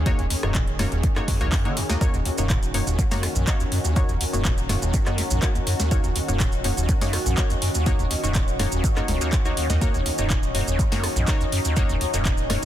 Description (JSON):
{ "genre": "acid house", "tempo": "123 BPM", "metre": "4/4", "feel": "straight", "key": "Eb minor pentatonic", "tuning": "A4 = 437 Hz", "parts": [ { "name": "lush unison pad", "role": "sustained chords", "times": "0.0-12.7 s", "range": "Eb3 to Ab4", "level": "-31 LUFS", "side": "equal", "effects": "chorus, sidechain pumping" }, { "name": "acid bass, square", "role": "riff", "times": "0.0-12.7 s", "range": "Db2 to Eb3", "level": "-26 LUFS", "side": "equal", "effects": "overdrive, lush chorus, cassette tape" }, { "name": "filtered dub chord stab", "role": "stabs", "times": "0.1-12.7 s", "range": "Bb3 to Eb5", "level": "-31 LUFS", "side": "left 2 dB", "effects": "chorus, ping-pong delay" }, { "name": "booming analog drum machine", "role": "drums", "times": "0.1-12.7 s", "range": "handclaps, hi-hat, rim click, snare drum", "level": "-30 LUFS", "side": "equal", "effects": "none" }, { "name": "electronic kick drum", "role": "drums", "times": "0.1-12.4 s", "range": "none", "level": "-23 LUFS", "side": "equal", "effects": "none" }, { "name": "warm sub bass", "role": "bass", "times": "0.2-12.7 s", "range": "Eb1 to Eb2", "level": "-27 LUFS", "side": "equal", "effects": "sidechain pumping" }, { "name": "maracas", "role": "percussion", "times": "2.0-12.7 s", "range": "none", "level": "-33 LUFS", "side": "right 4 dB", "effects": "none" }, { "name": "deep dark ambient pad", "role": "texture", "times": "3.3-12.7 s", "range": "Gb4 to Db6", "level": "-32 LUFS", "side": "equal", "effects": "chorus, built-in reverb, sidechain pumping" } ], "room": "light reverb, digital ambience", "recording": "dense, heavily limited modern master", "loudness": "-20 LUFS", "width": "side -12 dB against mid", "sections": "0.0-12.7 A section", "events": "none", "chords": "0.0 Ebm7" }